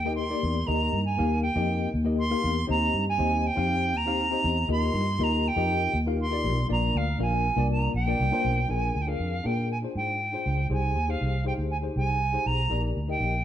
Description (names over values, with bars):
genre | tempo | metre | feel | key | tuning
uptempo 1960s-style soul | 120 BPM | 4/4 | straight | Bb mixolydian | A4 = 441 Hz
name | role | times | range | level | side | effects
bright reedy silver concert flute | melody | 0.0-13.4 s | F5 to C6 | -28 LUFS | right 2 dB | none
tine electric piano | accompaniment | 0.0-13.4 s | Bb3 to F5 | -31 LUFS | left 4 dB | overdrive, fast stereo tremolo
vintage muted fingered electric bass | bass | 0.0-13.4 s | Bb1 to Bb2 | -27 LUFS | equal | none
room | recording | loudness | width
moderate stone room reverb, RT60 1.2 s | band playing live in one room | -24 LUFS | side -10 dB against mid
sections
0.0-8.7 A section; 8.7-13.4 B section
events
none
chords
0.0 Eb; 2.7 Cm/Eb; 4.7 Ebadd9; 6.7 Bb; 8.7 Bb7; 10.7 Abmaj7/C; 12.7 Ebmaj7/Bb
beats
0.18 | 0.68 1.18 1.68 2.18 | 2.69 3.19 3.69 4.19 | 4.69 5.19 5.69 6.19 | 6.69 7.20 7.70 8.20 | 8.70 9.20 9.70 10.20 | 10.70 11.21 11.71 12.21 | 12.71 13.21